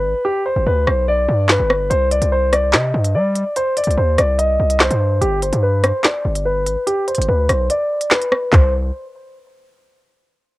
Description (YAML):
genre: hip hop, drill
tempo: 145 BPM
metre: 4/4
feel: half-time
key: unclear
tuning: A4 = 440 Hz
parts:
  - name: dark concert grand piano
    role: melody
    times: 0.0-8.7 s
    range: G4 to Eb5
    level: -18 LUFS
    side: equal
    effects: low-pass filter, cassette tape, analog delay
  - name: hard-hitting 808-style bass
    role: bass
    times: 0.0-8.9 s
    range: G1 to G3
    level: -18 LUFS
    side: equal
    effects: none
  - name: drill drum kit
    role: drums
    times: 0.9-8.6 s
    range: handclaps, hi-hat, kick drum, rim click, snare drum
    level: -16 LUFS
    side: equal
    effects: none
room: little or no reverb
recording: home recording on cassette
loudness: -14 LUFS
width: side -18 dB against mid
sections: 0.0-8.5 A section; 8.5-10.2 B section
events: break 0.0-1.9; filter sweep on grand piano 0.0-8.5; kick muted 7.7-8.5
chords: 0.0 G; 1.9 Cmadd9; 5.2 G; 8.5 N.C.